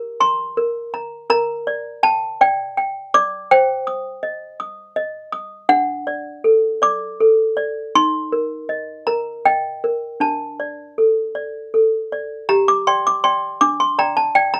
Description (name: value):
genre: classical, lullaby for toy piano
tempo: 54 BPM (dotted quarters)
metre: 6/8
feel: straight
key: G minor from 3.5 s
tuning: A4 = 441 Hz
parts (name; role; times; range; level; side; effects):
- toy piano; solo; 0.0-14.6 s; D4 to Eb6; -19 LUFS; equal; none
room: little or no reverb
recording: close, detailed microphones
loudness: -19 LUFS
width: mono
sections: 0.0-12.5 A section; 12.5-14.6 B section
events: none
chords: 0.0 Gm (rootless); 1.3 Gm/Bb; 3.5 Cm; 5.7 D; 7.9 Eb; 10.2 D5; 12.5 G5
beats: 0.22 | 1.31 2.41 | 3.50 4.60 | 5.70 6.83 | 7.94 9.06 | 10.19 11.34 | 12.49 13.59